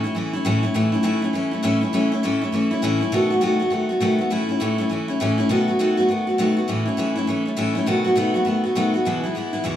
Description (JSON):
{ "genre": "rock", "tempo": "202 BPM", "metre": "4/4", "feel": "swing 62% on 8ths", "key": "unclear", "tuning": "A4 = 440 Hz", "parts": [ { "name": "picked steel-string acoustic guitar", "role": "solo", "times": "0.0-9.8 s", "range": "E2 to F#4", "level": "-19 LUFS", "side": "equal", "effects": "analog delay" } ], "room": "light reverb", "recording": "small room ambience", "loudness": "-18 LUFS", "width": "side -11 dB against mid", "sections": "0.0-9.1 A section", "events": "none", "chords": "0.0 A; 3.1 B7; 4.3 A; 5.5 B7; 6.7 A; 7.9 B7; 9.1 E" }